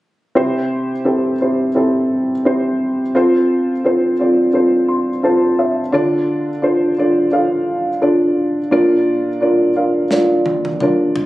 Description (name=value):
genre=piano-driven pop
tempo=86 BPM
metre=4/4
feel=swing 56% on 16ths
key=unclear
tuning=A4 = 440 Hz
part: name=dark upright piano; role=accompaniment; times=0.4-11.3 s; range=Bb2 to C6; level=-14 LUFS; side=equal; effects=none
part: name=modern studio drum kit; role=drums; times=10.1-11.3 s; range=snare drum, toms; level=-24 LUFS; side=equal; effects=none
room=light reverb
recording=recorded on a phone in the room, club reverb, compression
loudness=-14 LUFS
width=side -17 dB against mid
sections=0.3-11.3 A section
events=upright piano fill 4.5-5.9; drum fill 10.1-11.3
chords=0.3 C; 3.1 F; 5.9 Dm; 8.7 Bb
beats=| 0.35 1.05 1.75 2.44 | 3.14 3.84 4.54 5.23 | 5.93 6.63 7.33 8.02 | 8.72 9.42 10.11 10.81